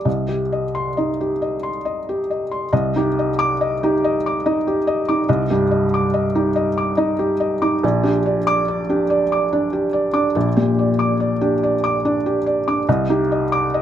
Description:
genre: neoclassical minimalist piano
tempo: 71 BPM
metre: 3/4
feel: rubato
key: C minor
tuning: A4 = 440 Hz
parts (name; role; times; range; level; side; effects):
- felt-muted upright piano; solo; 0.0-13.8 s; Bb1 to D6; -17 LUFS; equal; none
room: moderate studio ambience, RT60 0.5 s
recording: none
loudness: -17 LUFS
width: side -10 dB against mid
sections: 0.0-2.7 A section; 2.7-13.8 A section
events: none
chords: 0.1 Cm; 2.7 Cmadd9; 7.8 Gm/Bb; 12.9 Cmadd9

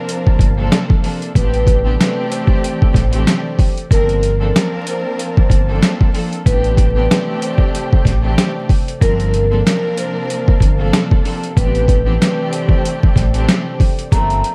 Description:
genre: hip hop, boom-bap hip-hop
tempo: 94 BPM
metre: 4/4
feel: swing 55% on 16ths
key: unclear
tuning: A4 = 439 Hz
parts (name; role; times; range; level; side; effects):
- vibraphone with soft mallets; melody; 0.0-14.5 s; Bb4 to Bb5; -24 LUFS; equal; tape echo
- warm studio string section; accompaniment; 0.0-14.5 s; E3 to Bb4; -24 LUFS; equal; none
- warm analog pad; sustained chords; 0.0-14.5 s; C3 to A5; -32 LUFS; equal; chorus
- boom bap sampler-style drum kit; drums; 0.1-14.5 s; hi-hat, kick drum, snare drum; -16 LUFS; equal; overdrive
- deep dub fingered electric bass; bass; 0.4-14.4 s; G1 to A1; -19 LUFS; equal; none
room: digital ambience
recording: dark, warm production, vinyl crackle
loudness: -15 LUFS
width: mono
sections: 0.0-14.1 A section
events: none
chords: 0.0 Gm11; 1.4 Am11; 3.9 Gm11; 6.5 Am11; 9.0 Gm11; 11.6 Am11

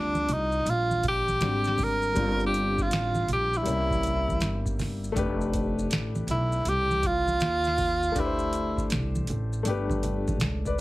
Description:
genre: hip hop, jazz-hop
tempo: 80 BPM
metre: 4/4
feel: swing 65% on 16ths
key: unclear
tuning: A4 = 440 Hz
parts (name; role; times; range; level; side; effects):
- breathy tenor saxophone; melody; 0.0-8.9 s; D4 to Bb4; -26 LUFS; right 1 dB; none
- warm grand piano; accompaniment; 0.0-10.8 s; D3 to D5; -32 LUFS; left 4 dB; none
- upright bass; bass; 0.0-10.8 s; F1 to Eb2; -30 LUFS; equal; none
- congas and maracas; percussion; 0.1-10.8 s; none; -37 LUFS; right 1 dB; none
- booming analog drum machine; drums; 0.3-10.8 s; hi-hat, kick drum, snare drum; -32 LUFS; equal; none
room: light reverb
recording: heavily compressed radio sound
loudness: -24 LUFS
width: side -18 dB against mid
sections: 0.0-10.8 A section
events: none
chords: 0.0 Ebmaj9 (rootless); 2.2 Gm7; 3.7 C7b9; 5.2 Fadd9; 8.2 D9sus4; 9.7 Gadd9

